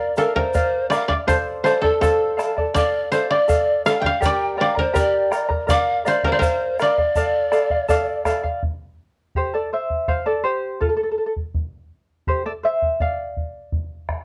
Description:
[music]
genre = andean folk, Andean ensemble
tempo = 82 BPM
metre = 2/4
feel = straight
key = unclear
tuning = A4 = 440 Hz
[part]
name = koto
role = melody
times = 0.0-8.4 s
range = A4 to G5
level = -24 LUFS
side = equal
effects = plate reverb
[part]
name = breathy polished pan flute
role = second line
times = 0.0-8.2 s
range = A4 to G5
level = -24 LUFS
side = equal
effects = none
[part]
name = charango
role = accompaniment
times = 0.0-14.1 s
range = F4 to Bb5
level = -24 LUFS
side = equal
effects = none
[part]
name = egg shaker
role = percussion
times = 0.2-8.4 s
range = none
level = -45 LUFS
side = equal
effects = none
[part]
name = bombo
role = percussion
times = 0.4-14.2 s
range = none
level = -28 LUFS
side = equal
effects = none
[sound]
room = moderate studio reverb, RT60 0.5 s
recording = worn, warbling old tape, cassette tape, warbly pitch drift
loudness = -21 LUFS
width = mono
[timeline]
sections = 0.0-8.6 A section; 8.6-14.2 B section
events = charango solo 8.6-14.2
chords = 0.0 Bb; 1.3 F; 2.8 Dm; 4.2 Gm; 5.7 Bb; 7.2 Dm; 8.6 C5; 10.1 F; 11.5 C5; 13.0 N.C.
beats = 0.55 | 1.28 2.02 | 2.75 3.49 | 4.22 4.95 | 5.69 6.42 | 7.15 7.88 | 8.61 9.35 | 10.08 10.81 | 11.54 12.27 | 12.99 13.72

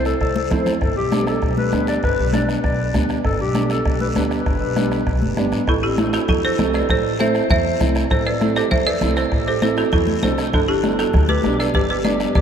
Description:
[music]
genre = latin, cumbia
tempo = 198 BPM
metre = 4/4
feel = straight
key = A minor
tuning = A4 = 441 Hz
[part]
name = breathy clarinet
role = second line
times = 0.0-12.4 s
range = C4 to D5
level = -24 LUFS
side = left 2 dB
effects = none
[part]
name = dark upright piano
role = accompaniment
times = 0.0-12.3 s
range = G3 to E4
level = -24 LUFS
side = right 3 dB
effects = none
[part]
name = upright bass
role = bass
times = 0.0-12.4 s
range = F#1 to E2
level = -24 LUFS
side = equal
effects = none
[part]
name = bombo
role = percussion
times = 0.1-12.4 s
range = none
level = -24 LUFS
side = right 1 dB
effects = none
[part]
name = guiro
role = percussion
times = 0.1-12.4 s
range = none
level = -36 LUFS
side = left 6 dB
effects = none
[part]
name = congas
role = percussion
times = 0.4-12.4 s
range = none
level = -25 LUFS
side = left 3 dB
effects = none
[part]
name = folk marimba with hard mallets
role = melody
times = 5.7-12.4 s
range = D4 to E5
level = -21 LUFS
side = right 2 dB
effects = none
[sound]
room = wet cathedral reverb, RT60 6.4 s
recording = in a vast, echoing space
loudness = -16 LUFS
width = side -8 dB against mid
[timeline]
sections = 0.0-5.7 A section; 5.7-12.4 B section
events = clarinet solo 0.0-5.7; drum fill 0.4-0.8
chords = 0.0 Am; 0.8 G; 5.7 Am; 10.5 G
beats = 0.21 0.51 | 0.81 1.12 1.42 1.73 | 2.03 2.33 2.64 2.94 | 3.25 3.55 3.85 4.16 | 4.46 4.77 5.07 5.37 | 5.68 5.98 6.29 6.59 | 6.89 7.20 7.50 7.80 | 8.11 8.41 8.71 9.02 | 9.32 9.62 9.93 10.23 | 10.54 10.84 11.14 11.45 | 11.75 12.05 12.36

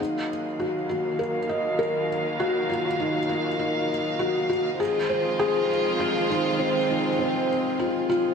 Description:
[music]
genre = piano and strings electronica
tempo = 100 BPM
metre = 4/4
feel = straight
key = Eb dorian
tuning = A4 = 440 Hz
[part]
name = dark chamber string section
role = sustained chords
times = 0.0-8.3 s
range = Eb3 to F5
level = -28 LUFS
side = right 3 dB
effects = low-pass filter, shimmer reverb
[part]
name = felt-muted upright piano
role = riff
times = 0.0-8.3 s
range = C4 to Eb5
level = -24 LUFS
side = left 2 dB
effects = ping-pong delay, shimmer reverb
[part]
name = warm studio cello section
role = bass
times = 0.0-8.3 s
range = Eb2 to F2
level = -39 LUFS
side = right 2 dB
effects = none
[sound]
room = wet echo chamber reverb, RT60 1.7 s, small room ambience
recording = none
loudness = -22 LUFS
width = side -6 dB against mid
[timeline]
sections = 0.0-8.3 A section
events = build-up 0.0-8.3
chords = 0.0 Ebmadd9; 4.8 Fm7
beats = | 0.00 0.60 1.20 1.80 | 2.40 3.00 3.60 4.20 | 4.80 5.40 6.00 6.60 | 7.20 7.80

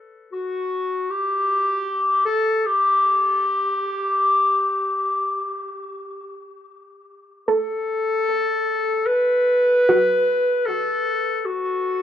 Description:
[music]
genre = ambient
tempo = free time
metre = none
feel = none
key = unclear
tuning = A4 = 440 Hz
[part]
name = clear clarinet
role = melody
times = 0.3-12.0 s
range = F#4 to B4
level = -19 LUFS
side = left 1 dB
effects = analog delay
[part]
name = soft round pluck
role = arpeggios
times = 7.5-10.8 s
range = F#4 to A4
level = -21 LUFS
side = right 2 dB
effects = chorus, cassette tape, analog delay
[sound]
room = wet booth ambience, RT60 0.3 s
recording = home recording on cassette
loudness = -18 LUFS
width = side -10 dB against mid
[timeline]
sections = 0.0-7.5 A section; 7.5-12.0 B section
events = none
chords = 0.0 N.C.; 7.5 B7(no3)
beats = free time

